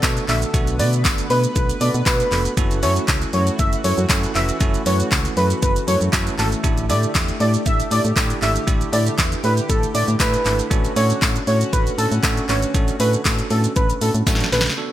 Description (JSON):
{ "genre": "dance-pop", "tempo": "118 BPM", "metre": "4/4", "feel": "straight", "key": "unclear", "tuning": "A4 = 440 Hz", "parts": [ { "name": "bell-like tine electric piano", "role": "accompaniment", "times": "0.0-14.9 s", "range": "A3 to B4", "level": "-26 LUFS", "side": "right 4 dB", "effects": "fast stereo tremolo, sidechain pumping" }, { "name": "chorused pulse-width pad", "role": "sustained chords", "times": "0.0-14.7 s", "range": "D3 to B4", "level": "-30 LUFS", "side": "left 1 dB", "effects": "sidechain pumping" }, { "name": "solid FM bass", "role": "bass", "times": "0.0-14.7 s", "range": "E#1 to B2", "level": "-21 LUFS", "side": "equal", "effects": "sidechain pumping" }, { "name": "deep house drum kit", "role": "drums", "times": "0.0-14.8 s", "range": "handclaps, hi-hat, kick drum, shaker, snare drum", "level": "-21 LUFS", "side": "equal", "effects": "gated reverb" }, { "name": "tambourine", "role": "percussion", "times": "0.0-14.4 s", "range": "none", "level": "-33 LUFS", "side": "left 11 dB", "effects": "none" }, { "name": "octave-doubled lead", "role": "melody", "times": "0.3-14.6 s", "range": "A4 to E5", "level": "-23 LUFS", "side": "equal", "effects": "chorus" } ], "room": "light reverb", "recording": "bright 1980s-style digital production", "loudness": "-16 LUFS", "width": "side -13 dB against mid", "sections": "0.0-14.8 A section", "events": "drop 0.0-14.8; drum fill 14.3-14.8", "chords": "0.0 Bm7; 2.6 F#m7; 6.6 A7sus4; 10.7 Dmaj7" }